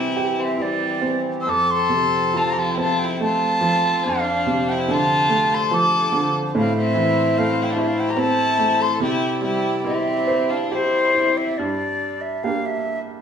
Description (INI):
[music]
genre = celtic folk, Celtic slow air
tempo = 71 BPM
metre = 3/4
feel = uneven beats, rubato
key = unclear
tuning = A4 = 437 Hz
[part]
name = bright wooden flute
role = melody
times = 0.0-13.0 s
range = C5 to E6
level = -21 LUFS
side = equal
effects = slapback echo
[part]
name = rich fiddle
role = second line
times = 0.0-11.6 s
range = G3 to C5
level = -26 LUFS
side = left 3 dB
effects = none
[part]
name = clear upright piano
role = accompaniment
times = 0.0-13.2 s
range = F2 to C5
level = -23 LUFS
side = right 2 dB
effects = none
[part]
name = pedal harmonium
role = sustained chords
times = 0.0-11.6 s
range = E3 to D5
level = -27 LUFS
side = left 1 dB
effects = none
[sound]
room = moderate recital hall reverb, RT60 1.4 s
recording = small room ambience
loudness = -18 LUFS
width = side -7 dB against mid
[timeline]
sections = 0.0-11.6 A section; 11.6-13.2 B section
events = none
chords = 0.0 C; 1.5 F; 4.0 Dm7/F; 6.6 Am; 9.0 Cadd9; 11.6 Gm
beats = 0.59 | 1.47 2.35 3.20 | 4.05 4.89 5.73 | 6.56 7.38 8.19 | 9.01 9.85 10.72 | 11.59 12.44